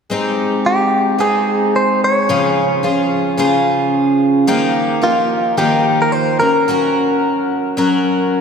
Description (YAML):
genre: acoustic pop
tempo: 109 BPM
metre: 4/4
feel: swing 60% on 16ths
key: Ab major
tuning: A4 = 440 Hz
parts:
  - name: picked twelve-string acoustic guitar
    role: accompaniment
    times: 0.1-8.4 s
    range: Db3 to Bb4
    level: -15 LUFS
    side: equal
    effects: none
  - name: direct-recorded clean electric guitar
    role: melody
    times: 0.7-8.4 s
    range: F4 to Db5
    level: -16 LUFS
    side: equal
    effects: none
room: wet church reverb, RT60 3.7 s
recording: recorded in a church or concert hall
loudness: -13 LUFS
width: side -6 dB against mid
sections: 0.1-8.4 A section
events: none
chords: 0.1 Abmaj7; 2.3 Db; 4.5 Ebadd9; 6.4 Gb